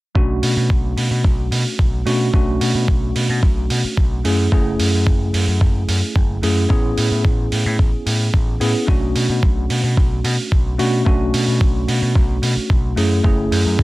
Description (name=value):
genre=nu-disco, nu disco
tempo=110 BPM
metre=4/4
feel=straight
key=B dorian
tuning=A4 = 441 Hz
part: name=tine electric piano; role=accompaniment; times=0.1-13.8 s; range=A3 to G#4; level=-21 LUFS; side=equal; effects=overdrive, medium stereo tremolo, vintage 12-bit sampler grit, sidechain pumping, tape echo
part: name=overdriven picked electric bass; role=bass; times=0.2-13.8 s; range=F#1 to B2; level=-19 LUFS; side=equal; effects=none
part: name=electronic kick drum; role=drums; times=0.2-13.8 s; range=none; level=-16 LUFS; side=equal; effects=overdrive
part: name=electronic hi-hat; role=drums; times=0.4-13.6 s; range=none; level=-26 LUFS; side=right 3 dB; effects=overdrive
room=digital ambience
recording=none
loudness=-15 LUFS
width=side -19 dB against mid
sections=0.2-13.8 A section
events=none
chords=0.2 Bm7; 4.2 F#m7; 6.7 Amaj7; 8.9 Bm7; 13.0 F#m7